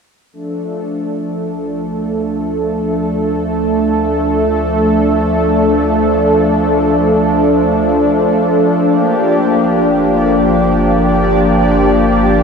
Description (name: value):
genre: ambient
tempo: free time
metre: none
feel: none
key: D minor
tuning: A4 = 436 Hz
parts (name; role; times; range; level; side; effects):
- lush unison pad; sustained chords; 0.3-12.4 s; F3 to A4; -12 LUFS; equal; chorus
- round analog bass; bass; 0.3-12.4 s; G1 to D2; -24 LUFS; equal; none
- bubbling stepped-filter texture; texture; 1.1-12.4 s; D5; -26 LUFS; right 2 dB; chorus, built-in reverb
room: wet huge ambient reverb, RT60 8.7 s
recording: none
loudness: -11 LUFS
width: side -5 dB against mid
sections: 0.3-12.4 A section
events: fade-in on analog synth bass 0.3-12.4; fade-in on synth texture 0.3-12.4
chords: 0.3 Dm; 8.9 Gm7